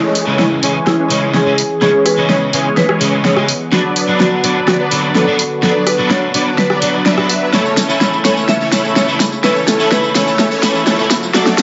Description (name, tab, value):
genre	EDM, festival progressive house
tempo	126 BPM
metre	4/4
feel	straight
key	A major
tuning	A4 = 440 Hz
part	marimba with hard mallets	melody	0.0-11.6 s	E4 to E5	-20 LUFS	equal	delay
part	lush unison pad	sustained chords	0.0-11.6 s	C#3 to G#4	-26 LUFS	equal	chorus
part	supersaw chords	riff	0.0-11.6 s	E3 to E5	-20 LUFS	equal	ensemble chorus, low-pass filter, delay
part	pop drum kit	drums	0.2-11.6 s	hi-hat, rim click, snare drum, tambourine	-18 LUFS	equal	overdrive
part	electric guitar at the edge of break-up	accompaniment	0.3-11.4 s	C#3 to F#4	-21 LUFS	equal	ensemble chorus
part	riser	sound effects	9.9-11.6 s	none	-29 LUFS	equal	none
room	moderate digital room reverb, RT60 1.0 s, digital ambience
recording	high-pass filter, nothing above 7.7 kHz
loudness	-14 LUFS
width	mono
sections	0.0-11.6 A section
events	build-up 0.0-11.6; drum fill 0.0-11.6; filter sweep on supersaw synth 0.0-11.6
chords	0.0 C#m; 3.7 Bm; 7.5 A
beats	0.39 0.87 1.34 | 1.82 2.29 2.77 3.25 | 3.72 4.20 4.68 5.15 | 5.63 6.10 6.58 7.06 | 7.53 8.01 8.48 8.96 | 9.44 9.91 10.39 10.87 | 11.34